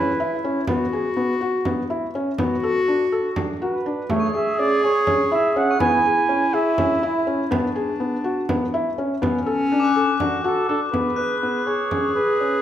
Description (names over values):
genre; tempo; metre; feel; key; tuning
contemporary instrumental, chamber music in an uneven meter; 246 BPM (eighths); 7/8; straight; C# phrygian; A4 = 440 Hz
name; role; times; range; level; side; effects
warm flugelhorn; melody; 0.0-0.4, 3.6-7.3, 10.2-12.6 s; F#4 to G#5; -23 LUFS; right 3 dB; none
mellow clarinet; second line; 0.0-12.6 s; C#4 to G#4; -23 LUFS; left 1 dB; none
felt-muted upright piano; arpeggios; 0.0-12.6 s; A3 to B4; -23 LUFS; left 1 dB; none
frame drum; percussion; 0.4-12.1 s; none; -30 LUFS; right 2 dB; none
crotales; texture; 4.2-6.0, 9.8-12.6 s; C#6 to F#6; -29 LUFS; left 6 dB; none
room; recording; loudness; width
wet recital hall reverb, RT60 1.8 s; none; -19 LUFS; side -10 dB against mid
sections
0.0-10.9 A section; 10.9-12.6 B section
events
none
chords
0.0 C#m7; 0.7 Eadd9; 2.4 Bm7; 4.1 Amaj7 (rootless); 5.8 C#m; 7.5 E9; 9.2 Bm9 (rootless); 10.9 C#7(no3)